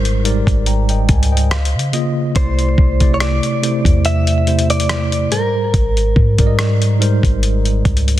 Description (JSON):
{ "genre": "contemporary R&B", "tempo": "71 BPM", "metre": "4/4", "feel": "swing 54% on 16ths", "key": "unclear", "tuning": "A4 = 440 Hz", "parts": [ { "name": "mellow tine electric piano", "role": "accompaniment", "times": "0.0-8.2 s", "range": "Ab2 to Bb5", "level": "-18 LUFS", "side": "equal", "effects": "fast stereo tremolo" }, { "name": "clean 808-style bass", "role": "bass", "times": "0.0-8.2 s", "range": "G1 to Db3", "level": "-16 LUFS", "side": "equal", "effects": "none" }, { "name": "dusty soul sampler-style drum kit", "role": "drums", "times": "0.1-8.2 s", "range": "hi-hat, kick drum, rim click", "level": "-17 LUFS", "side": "equal", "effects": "soft clipping on snare" }, { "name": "direct-recorded clean electric guitar", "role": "melody", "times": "2.4-7.8 s", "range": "Bb4 to E5", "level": "-21 LUFS", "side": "right 1 dB", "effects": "ping-pong delay" } ], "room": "digital ambience", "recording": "dense, heavily limited modern master", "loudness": "-13 LUFS", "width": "side -14 dB against mid", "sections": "0.0-8.2 A section", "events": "tine electric piano fill 0.7-2.4", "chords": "0.0 Abmaj9; 1.5 Db69; 2.4 C69; 5.3 Abmaj9" }